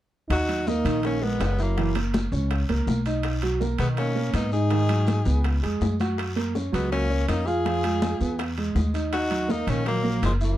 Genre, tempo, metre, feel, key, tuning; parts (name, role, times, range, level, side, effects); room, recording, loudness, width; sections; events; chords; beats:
Afro-Cuban jazz; 163 BPM; 4/4; straight; Eb minor; A4 = 440 Hz
edgy tenor saxophone; melody; 0.3-10.6 s; Ab3 to Ab4; -29 LUFS; left 3 dB
breathy trombone; second line; 0.3-10.6 s; F3 to F4; -30 LUFS; right 2 dB
upright bass; bass; 0.3-10.6 s; Gb1 to B2; -25 LUFS; equal
bongos; percussion; 0.3-10.4 s; -37 LUFS; left 8 dB
congas; percussion; 0.3-10.6 s; -31 LUFS; left 1 dB
guiro; percussion; 0.3-10.6 s; -43 LUFS; left 3 dB
timbales; percussion; 0.3-10.4 s; -37 LUFS; right 5 dB
warm concert grand piano; accompaniment; 0.5-10.6 s; Eb3 to Gb5; -28 LUFS; right 3 dB
little or no reverb; dark, warm production; -22 LUFS; side -13 dB against mid
0.3-10.6 A section
0.3 Ebmadd11; 1.8 Gb6; 3.2 Bmaj9; 4.7 Abm7; 5.4 Db7; 6.2 Gb; 7.7 Fdim; 8.4 E; 9.1 Ebm
| 0.30 0.67 1.04 1.40 | 1.77 2.14 2.50 2.87 | 3.24 3.61 3.98 4.34 | 4.71 5.08 5.45 5.82 | 6.18 6.55 6.92 7.29 | 7.66 8.02 8.39 8.76 | 9.13 9.49 9.86 10.23